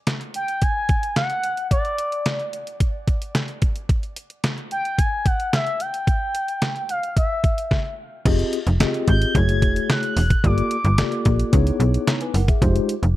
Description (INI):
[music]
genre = early-eighties boogie funk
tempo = 110 BPM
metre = 4/4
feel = straight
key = unclear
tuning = A4 = 440 Hz
[part]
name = detuned 8-bit digital drum machine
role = drums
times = 0.1-13.2 s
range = crash cymbal, handclaps, hi-hat, kick drum, snare drum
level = -21 LUFS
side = equal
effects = none
[part]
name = expressive portamento lead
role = melody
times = 0.4-11.5 s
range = D5 to Ab6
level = -25 LUFS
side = left 1 dB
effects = chorus
[part]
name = mellow tine electric piano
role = accompaniment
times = 8.3-12.9 s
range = Ab3 to Bb5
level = -24 LUFS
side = left 3 dB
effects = medium stereo tremolo
[part]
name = slap-like FM bass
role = bass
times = 8.3-13.2 s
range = Fb1 to Db2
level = -19 LUFS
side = equal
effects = none
[sound]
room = light reverb, digital ambience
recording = dark, warm production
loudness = -19 LUFS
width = side -15 dB against mid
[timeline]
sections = 0.0-8.3 A section; 8.3-13.2 B section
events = stop 7.7-8.3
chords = 0.0 N.C.; 8.3 Fm9; 9.3 Gbm9; 10.4 Gm9; 11.5 Dbm9; 12.6 Fm9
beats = 0.07 0.62 1.16 | 1.71 2.25 2.80 3.34 | 3.89 4.43 4.98 5.53 | 6.07 6.62 7.16 7.71 | 8.25 8.80 9.34 9.89 | 10.44 10.98 11.53 12.07 | 12.62 13.16